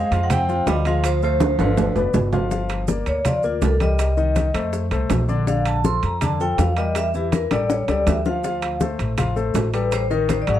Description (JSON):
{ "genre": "Afro-Cuban jazz", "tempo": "162 BPM", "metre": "4/4", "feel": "straight", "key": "G minor", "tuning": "A4 = 444 Hz", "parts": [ { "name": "vibraphone with medium hard mallets", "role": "melody", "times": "0.0-10.6 s", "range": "F4 to C6", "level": "-24 LUFS", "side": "left 1 dB", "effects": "none" }, { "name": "warm tenor saxophone", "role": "second line", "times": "0.0-2.1 s", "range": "D3 to C4", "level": "-28 LUFS", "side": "right 9 dB", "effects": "none" }, { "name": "warm grand piano", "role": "accompaniment", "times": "0.0-10.6 s", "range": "D3 to F5", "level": "-26 LUFS", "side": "left 5 dB", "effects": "none" }, { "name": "upright bass", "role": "bass", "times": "0.0-10.6 s", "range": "F1 to F2", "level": "-23 LUFS", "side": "equal", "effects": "none" }, { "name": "bongos", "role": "percussion", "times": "0.1-10.5 s", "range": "none", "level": "-29 LUFS", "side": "left 6 dB", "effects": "none" }, { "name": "congas", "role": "percussion", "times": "0.1-10.6 s", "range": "none", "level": "-26 LUFS", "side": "equal", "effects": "none" }, { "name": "maracas", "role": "percussion", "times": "0.1-10.6 s", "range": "none", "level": "-40 LUFS", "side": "right 18 dB", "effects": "none" }, { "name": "timbales", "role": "percussion", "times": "0.1-10.6 s", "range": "none", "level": "-27 LUFS", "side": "right 8 dB", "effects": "none" } ], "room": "studio reverb", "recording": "dry, close 1970s-style studio recording", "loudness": "-18 LUFS", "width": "side -11 dB against mid", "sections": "0.0-2.5 A section; 2.5-10.6 B section", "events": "drum fill 1.4-2.5, 7.0-8.4; vibraphone solo 2.5-10.6", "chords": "0.0 Fmadd9; 1.0 Dm7; 1.8 G7; 2.5 Gm7; 4.0 Cm7; 4.7 F; 5.5 Bbmaj7; 7.0 Edim; 7.7 A7; 8.4 Dm7; 9.9 Ab7b9", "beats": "0.30 0.67 | 1.04 1.41 1.78 2.15 | 2.52 2.88 3.25 3.62 | 3.99 4.36 4.73 5.10 | 5.47 5.84 6.21 6.58 | 6.96 7.33 7.70 8.07 | 8.44 8.81 9.18 9.55 | 9.92 10.30" }